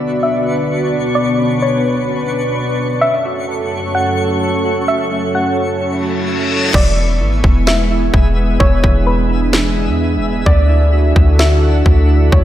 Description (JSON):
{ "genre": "hip hop, atmospheric cloud-rap", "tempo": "129 BPM", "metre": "4/4", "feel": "half-time", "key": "unclear", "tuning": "A4 = 440 Hz", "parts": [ { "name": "soft round pluck", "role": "melody", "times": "0.0-12.4 s", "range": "B4 to F#5", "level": "-20 LUFS", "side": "left 1 dB", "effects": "chorus, low-pass filter, analog delay" }, { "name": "dark analog pad", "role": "sustained chords", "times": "0.0-12.4 s", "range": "F#2 to D5", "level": "-18 LUFS", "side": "equal", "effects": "chorus, sidechain pumping, low-pass filter" }, { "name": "soft electric-piano-like synth keys", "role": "arpeggios", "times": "0.0-12.4 s", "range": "E3 to B4", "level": "-24 LUFS", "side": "right 4 dB", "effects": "chorus, low-pass filter, analog delay" }, { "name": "twinkling granular texture", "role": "texture", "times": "0.0-12.4 s", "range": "A3 to C#6", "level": "-24 LUFS", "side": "left 1 dB", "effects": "built-in reverb" }, { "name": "reverse cymbal", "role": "sound effects", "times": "6.0-6.7 s", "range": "none", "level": "-20 LUFS", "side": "left 5 dB", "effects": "none" }, { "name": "soft 808-style bass", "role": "bass", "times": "6.7-12.4 s", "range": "E1 to E2", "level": "-13 LUFS", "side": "equal", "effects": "none" }, { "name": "trap drum kit", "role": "drums", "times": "6.7-12.4 s", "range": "crash cymbal, kick drum, snare drum", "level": "-15 LUFS", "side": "equal", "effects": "none" } ], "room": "moderate lush hall reverb, RT60 1.8 s", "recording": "dreamy mix soaked in reverb", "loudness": "-12 LUFS", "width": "side -12 dB against mid", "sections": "0.0-6.7 A section; 6.7-12.4 B section", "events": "filter sweep 0.0-6.7; reverse cymbal 6.0-6.7; hi-hats muted 6.7-12.4", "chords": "0.0 Bmadd9; 3.0 F#m; 6.7 E; 10.5 Dadd9" }